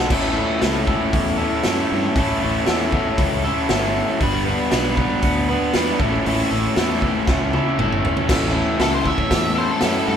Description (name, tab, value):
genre	garage rock duo or trio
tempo	117 BPM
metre	4/4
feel	straight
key	A mixolydian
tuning	A4 = 439 Hz
part	crunchy overdriven guitar	riff	0.0-10.2 s	A2 to B4	-20 LUFS	equal	none
part	fuzz fingered electric bass	bass	0.0-10.2 s	G1 to G2	-26 LUFS	equal	overdrive, tube saturation
part	raw garage drum kit	drums	0.1-9.9 s	crash cymbal, hi-hat, kick drum, snare drum, toms	-22 LUFS	equal	none
part	octave-fuzz lead guitar	melody	8.8-10.2 s	A4 to E5	-23 LUFS	left 2 dB	distortion
room	moderate small room reverb, RT60 0.5 s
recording	band playing live in one room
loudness	-17 LUFS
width	side -8 dB against mid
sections	0.0-8.3 A section; 8.3-10.2 B section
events	drum fill 7.3-8.3; lead electric guitar solo 8.3-10.2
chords	0.1 A; 4.2 G; 6.0 A